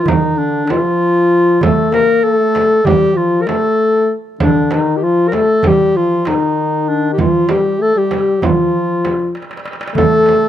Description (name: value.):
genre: Turkish makam ensemble.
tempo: 194 BPM (eighths).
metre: 9/8.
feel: straight.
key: unclear.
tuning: A4 = 439 Hz.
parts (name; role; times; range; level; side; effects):
mellow clarinet; melody; 0.0-10.5 s; D4 to Bb4; -13 LUFS; equal; none.
warm trombone; second line; 0.0-10.5 s; D3 to Bb3; -17 LUFS; left 8 dB; none.
darbuka; percussion; 0.1-10.4 s; none; -20 LUFS; right 6 dB; none.
frame drum; percussion; 0.1-10.4 s; none; -19 LUFS; right 4 dB; none.
room: light reverb, studio reverb.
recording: dry, close 1970s-style studio recording.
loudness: -11 LUFS.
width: side -11 dB against mid.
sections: 0.0-10.5 A section.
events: drum fill 9.4-10.0.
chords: none.